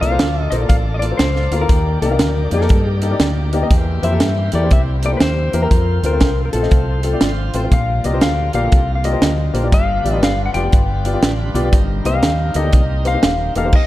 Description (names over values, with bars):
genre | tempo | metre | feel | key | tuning
uptempo gospel | 120 BPM | 4/4 | swing 64% on 8ths | Bb major | A4 = 440 Hz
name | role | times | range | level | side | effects
clean lap steel guitar | melody | 0.0-13.9 s | A4 to G5 | -22 LUFS | left 3 dB | slapback echo
warm upright piano | accompaniment | 0.0-13.7 s | G2 to F5 | -22 LUFS | left 2 dB | none
bright tonewheel organ | sustained chords | 0.0-13.7 s | D3 to G5 | -31 LUFS | right 2 dB | fast rotary speaker, overdrive
warm studio string section | sustained chords | 0.0-13.7 s | D3 to D5 | -32 LUFS | equal | none
fingered electric bass | bass | 0.0-13.7 s | Eb1 to G2 | -19 LUFS | equal | none
crisp fusion drum kit | drums | 0.0-13.9 s | crash cymbal, hi-hat, kick drum, snare drum | -16 LUFS | right 1 dB | none
room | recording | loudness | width
light reverb | dark, warm production | -14 LUFS | side -15 dB against mid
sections
0.0-13.9 A section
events
tonewheel organ fill 7.0-7.7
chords
0.0 Bbmaj7; 1.7 Ebmaj7; 3.7 C7/E; 5.7 F; 7.7 Bb6; 9.7 G7; 11.7 Cm7/G